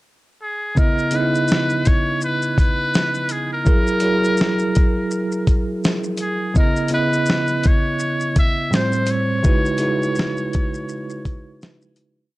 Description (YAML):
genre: lo-fi hip hop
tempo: 83 BPM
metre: 4/4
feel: swing 58% on 16ths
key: C# dorian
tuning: A4 = 443 Hz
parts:
  - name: trumpet with metal mute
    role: melody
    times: 0.4-11.6 s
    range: G#4 to E5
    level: -23 LUFS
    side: equal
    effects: none
  - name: bell-like tine electric piano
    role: accompaniment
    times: 0.8-12.4 s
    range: A2 to D#5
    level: -21 LUFS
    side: right 1 dB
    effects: fast stereo tremolo
  - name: dusty soul sampler-style drum kit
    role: drums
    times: 0.8-12.2 s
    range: hi-hat, kick drum, shaker, snare drum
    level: -18 LUFS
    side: equal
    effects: none
room: digital ambience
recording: dark, warm production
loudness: -16 LUFS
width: side -19 dB against mid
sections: 0.0-0.8 pickup bar; 0.8-12.3 A section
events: fade-out 9.4-12.3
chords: 0.0 N.C.; 0.8 C#m9; 3.7 F#9; 6.6 C#m9; 8.7 Am7; 9.4 C#m11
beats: 0.05 | 0.77 1.50 2.22 2.94 | 3.66 4.39 5.11 5.83 | 6.56 7.28 8.00 8.72 | 9.45 10.17 10.89 11.62